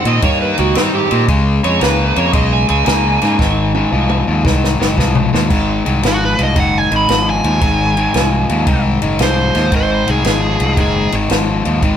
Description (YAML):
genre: electric blues shuffle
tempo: 114 BPM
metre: 4/4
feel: swing 67% on 8ths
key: Ab mixolydian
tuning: A4 = 439 Hz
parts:
  - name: overdriven slide guitar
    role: second line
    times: 0.0-4.2 s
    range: Eb4 to Ab5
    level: -18 LUFS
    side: right 8 dB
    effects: none
  - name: overdriven semi-hollow guitar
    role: riff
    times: 0.0-12.0 s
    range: Ab2 to C4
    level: -16 LUFS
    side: left 3 dB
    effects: none
  - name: fingered electric bass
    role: bass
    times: 0.0-12.0 s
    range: Gb1 to Bb2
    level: -17 LUFS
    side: equal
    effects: none
  - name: compact cocktail drum kit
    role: drums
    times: 0.1-12.0 s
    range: crash cymbal, kick drum, ride cymbal, snare drum, toms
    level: -19 LUFS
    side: equal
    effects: none
  - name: dark smooth lead guitar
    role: melody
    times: 6.1-11.1 s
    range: Gb4 to Cb6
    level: -17 LUFS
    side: right 2 dB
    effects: overdrive
room: moderate studio reverb, RT60 0.8 s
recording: band playing live in one room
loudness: -12 LUFS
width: side -9 dB against mid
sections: 0.0-5.5 A section; 5.5-12.0 A section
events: electric slide guitar solo 0.0-5.5; drum fill 3.4-5.5; lead electric guitar solo 5.5-12.0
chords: 0.0 Eb; 1.3 Db7; 3.4 Ab